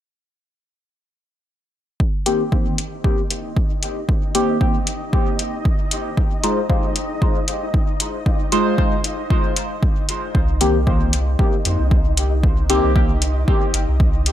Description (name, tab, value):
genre	dub techno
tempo	115 BPM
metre	4/4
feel	swing 55% on 16ths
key	C minor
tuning	A4 = 441 Hz
part	electronic kick drum	drums	2.0-14.1 s	none	-18 LUFS	equal	overdrive
part	flickering grainy texture	texture	2.9-14.3 s	Eb4 to Eb5	-30 LUFS	equal	built-in reverb, sidechain pumping
part	deep mellow chord stab	stabs	2.3-13.1 s	Eb3 to C5	-22 LUFS	left 1 dB	chorus, phaser, sidechain pumping, dub echo
part	electronic hi-hat	drums	2.3-14.3 s	none	-22 LUFS	left 2 dB	none
part	soft dub sub bass	bass	10.3-14.3 s	G1 to F2	-19 LUFS	equal	sidechain pumping
room	digital ambience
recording	none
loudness	-16 LUFS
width	side -12 dB against mid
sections	2.0-10.3 A section; 10.3-14.3 B section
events	none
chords	2.0 Cm7; 6.2 Fm7; 10.3 Cm7